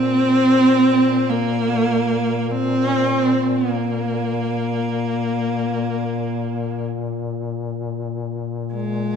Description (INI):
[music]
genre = caucasian folk, Caucasian lament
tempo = free time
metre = none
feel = none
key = unclear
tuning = A4 = 443 Hz
[part]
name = rich cello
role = melody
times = 0.0-9.2 s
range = Ab3 to C4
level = -18 LUFS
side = right 1 dB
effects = none
[part]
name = mellow duduk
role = drone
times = 0.0-9.2 s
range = Bb2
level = -25 LUFS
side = left 5 dB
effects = none
[sound]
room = moderate concert hall reverb, RT60 2.1 s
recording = recorded in a church or concert hall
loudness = -18 LUFS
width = side -7 dB against mid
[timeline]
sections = 0.0-9.2 A section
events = none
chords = none